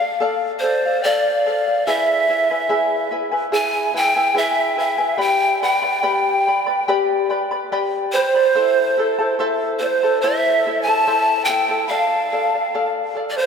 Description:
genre	andean folk, Andean ensemble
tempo	72 BPM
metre	4/4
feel	straight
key	unclear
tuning	A4 = 440 Hz
part	breathy pan flute	melody	0.0-13.5 s	C5 to A5	-19 LUFS	equal	ping-pong delay
part	charango	accompaniment	0.0-13.5 s	E4 to B5	-21 LUFS	left 2 dB	none
part	breathy large quena	second line	0.6-13.5 s	C5 to B5	-24 LUFS	right 3 dB	none
room	wet cathedral reverb, RT60 5.0 s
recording	dreamy mix soaked in reverb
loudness	-16 LUFS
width	side -6 dB against mid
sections	0.0-13.5 A section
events	none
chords	0.0 Dm; 1.9 E; 5.2 G; 8.5 Am; 11.9 Dm

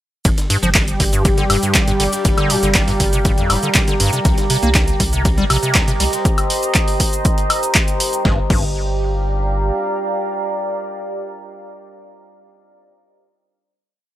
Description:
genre	acid house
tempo	120 BPM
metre	4/4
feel	straight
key	G minor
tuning	A4 = 440 Hz
part	punchy analog drum machine	drums	0.2-8.7 s	crash cymbal, handclaps, hi-hat, shaker, snare drum, woodblock	-19 LUFS	equal	overdrive
part	warm analog pad	sustained chords	0.5-6.3 s	G3 to G4	-22 LUFS	equal	chorus, vintage 12-bit sampler grit, sidechain pumping
part	acid bass, square	riff	0.3-8.6 s	G1 to Bb3	-21 LUFS	equal	overdrive, wide subtle chorus, tape echo
part	round analog bass	bass	0.3-9.7 s	F1 to C2	-21 LUFS	equal	tube saturation, sidechain pumping
part	breakbeat sampler-style drum kit	drums	0.3-6.2 s	hi-hat, ride cymbal, snare drum	-30 LUFS	right 1 dB	none
part	electronic kick drum	drums	0.3-8.7 s	none	-17 LUFS	equal	overdrive
part	deep dark ambient pad	texture	1.5-12.1 s	G4 to Bb5	-23 LUFS	right 1 dB	chorus, built-in reverb, sidechain pumping
room	little or no reverb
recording	dry, gritty hardware recording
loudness	-14 LUFS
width	side -13 dB against mid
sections	0.3-8.3 drop; 8.3-12.3 final chord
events	drop 0.3-8.3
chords	0.3 Gm7; 4.3 Cm7; 8.3 Gm7

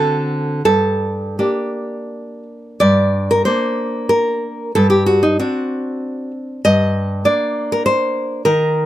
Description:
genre	romantic piece for solo classical guitar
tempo	78-102 BPM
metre	3/4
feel	rubato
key	G minor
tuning	A4 = 440 Hz
part	nylon-string guitar	solo	0.0-8.9 s	G2 to Eb5	-15 LUFS	equal	none
room	light reverb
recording	none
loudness	-15 LUFS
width	side -13 dB against mid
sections	0.0-2.8 A section; 2.8-8.9 A section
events	none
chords	0.0 D7; 0.6 Gm; 4.7 D7/G; 6.6 Gm

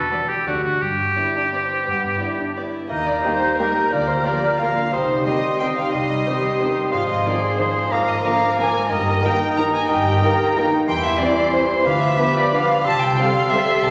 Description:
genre	classical, orchestral ballroom waltz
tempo	161-198 BPM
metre	3/4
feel	rubato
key	Eb major, C major from 10.9 s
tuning	A4 = 438 Hz
part	bright oboe	second line	0.0-13.9 s	F#4 to C6	-26 LUFS	equal	none
part	concert harp	arpeggios	0.0-13.9 s	G2 to E5	-30 LUFS	equal	none
part	dark chamber cello section	bass	0.0-13.9 s	D2 to Bb4	-31 LUFS	equal	none
part	dark chamber double bass section	bass	0.0-13.9 s	G1 to E2	-32 LUFS	equal	none
part	dark chamber violin section	melody	0.1-13.6 s	G4 to D5	-34 LUFS	equal	none
part	warm chamber violin section	second line	0.1-13.9 s	B3 to Bb5	-25 LUFS	equal	none
part	dark chamber viola section	accompaniment	0.1-13.6 s	Eb3 to G4	-36 LUFS	equal	none
part	bright clarinet	second line	2.9-13.9 s	Eb4 to B4	-34 LUFS	equal	none
part	silver concert flute	second line	2.9-13.9 s	C6 to G6	-30 LUFS	equal	none
part	warm bassoon	accompaniment	2.9-13.9 s	Eb3 to Bb3	-29 LUFS	equal	none
part	warm French horn section	sustained chords	3.3-13.7 s	D3 to C4	-31 LUFS	equal	none
room	wet recital hall reverb, RT60 1.3 s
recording	none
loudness	-20 LUFS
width	mono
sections	0.0-2.9 A section; 2.9-13.9 B section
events	none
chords	0.5 D; 0.8 G; 2.9 Eb; 3.9 Bb/D; 4.9 Cm; 6.9 Fm7/Ab; 7.9 Bb7/Ab; 8.9 Eb/G; 10.9 C/E; 11.9 Bdim/D; 12.8 C

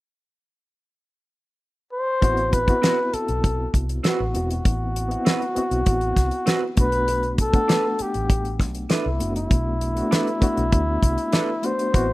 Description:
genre	lush 1970s-style soul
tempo	99 BPM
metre	4/4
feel	straight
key	A dorian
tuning	A4 = 440 Hz
part	warm flugelhorn	melody	1.9-12.1 s	E4 to C5	-24 LUFS	left 1 dB	none
part	reed electric piano	accompaniment	2.2-12.1 s	A3 to F#5	-28 LUFS	left 1 dB	fast tremolo
part	vintage muted fingered electric bass	bass	2.2-12.1 s	E1 to D2	-26 LUFS	equal	none
part	damped 70s drum kit	drums	2.2-12.1 s	hi-hat, kick drum, snare drum	-20 LUFS	equal	none
part	electric guitar through a small old amp	riff	2.8-11.5 s	C4 to B4	-28 LUFS	right 5 dB	none
room	studio ambience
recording	rough home demo mix, lossy compression artefacts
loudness	-19 LUFS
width	side -18 dB against mid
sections	0.0-2.2 A section; 2.2-12.1 B section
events	none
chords	0.0 N.C.; 2.2 Am69; 6.8 E7sus4

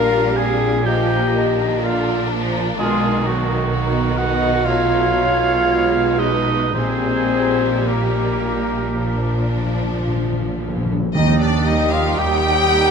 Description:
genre	classical, slow romantic movement for symphony orchestra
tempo	53-65 BPM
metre	4/4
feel	rubato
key	Eb major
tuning	A4 = 440 Hz
part	warm studio violin section	melody	0.0-12.9 s	C4 to G5	-26 LUFS	left 4 dB	none
part	bright clarinet	second line	0.0-12.9 s	F#3 to Bb4	-26 LUFS	equal	none
part	flute section	second line	0.0-12.9 s	D#4 to Eb6	-27 LUFS	right 1 dB	none
part	mellow cor anglais	second line	0.0-12.9 s	F#4 to Ab5	-24 LUFS	right 3 dB	none
part	rich studio violin section	second line	0.0-12.9 s	A3 to Eb4	-29 LUFS	left 3 dB	none
part	rich studio viola section	accompaniment	0.0-12.9 s	D3 to Ab3	-26 LUFS	right 1 dB	none
part	dark French horn section	sustained chords	0.0-12.9 s	F#3 to Bb4	-25 LUFS	left 4 dB	none
part	rich studio cello section	bass	0.0-12.9 s	Eb2 to B2	-24 LUFS	right 2 dB	none
part	rich studio double bass section	bass	0.0-12.9 s	Bb1 to Eb2	-24 LUFS	right 3 dB	none
part	timpani	percussion	0.0-0.3, 6.7-12.7 s	Bb2 to Eb3	-23 LUFS	equal	none
part	mellow bassoon	accompaniment	11.2-12.9 s	G4	-25 LUFS	equal	none
part	mellow trumpet section	stabs	11.2-12.9 s	D4 to G4	-22 LUFS	right 4 dB	none
room	moderate scoring stage reverb, RT60 1.7 s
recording	none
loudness	-16 LUFS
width	side -6 dB against mid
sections	0.0-11.2 A section; 11.2-12.9 B section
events	timpani fill 9.0-11.2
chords	0.0 Bb; 2.8 B; 4.7 B7; 6.8 Eb/Bb; 9.0 Bb; 11.2 Eb

